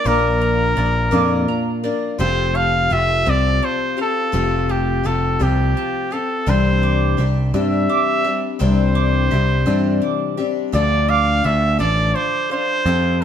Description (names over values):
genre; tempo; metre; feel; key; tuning
folk; 56 BPM (dotted quarters); 6/8; straight; F major; A4 = 439 Hz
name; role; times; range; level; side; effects
clear trumpet; melody; 0.0-13.2 s; G4 to F5; -20 LUFS; right 1 dB; none
picked twelve-string acoustic guitar; accompaniment; 0.0-13.2 s; Bb2 to Bb4; -21 LUFS; left 5 dB; none
bowl-back mandolin; arpeggios; 0.0-13.2 s; F4 to E6; -28 LUFS; right 10 dB; none
picked electric bass; bass; 0.1-13.2 s; F1 to G2; -19 LUFS; equal; none
room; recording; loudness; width
moderate stone room reverb, RT60 1.1 s; band playing live in one room; -16 LUFS; side -9 dB against mid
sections
0.0-13.2 A section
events
none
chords
0.0 Bb; 2.2 Fadd9; 6.5 Cadd9; 10.7 Dm